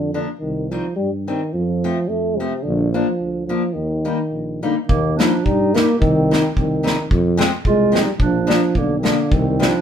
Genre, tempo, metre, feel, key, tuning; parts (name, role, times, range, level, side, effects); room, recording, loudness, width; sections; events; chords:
alpine folk, alpine dance band; 108 BPM; 2/4; swing 54% on 8ths, rubato; Eb major; A4 = 441 Hz
dark euphonium; melody; 0.0-9.8 s; C3 to Bb3; -20 LUFS; equal
mellow tuba; bass; 0.0-9.7 s; Bb1 to G2; -23 LUFS; right 1 dB
fingerpicked acoustic archtop guitar; accompaniment; 0.1-9.7 s; Eb3 to Eb4; -22 LUFS; left 4 dB
mellow clarinet; second line; 4.6-9.8 s; Bb3 to G4; -25 LUFS; right 7 dB
loose indie drum kit; drums; 4.9-9.7 s; kick drum, snare drum; -20 LUFS; equal
light reverb; band playing live in one room; -16 LUFS; side -8 dB against mid
0.0-4.9 A section; 4.9-9.8 A section
0.4 Cm; 1.6 F; 2.7 Bb; 3.8 Eb; 6.0 Cm; 7.1 Fm; 8.2 Bb; 9.3 Cm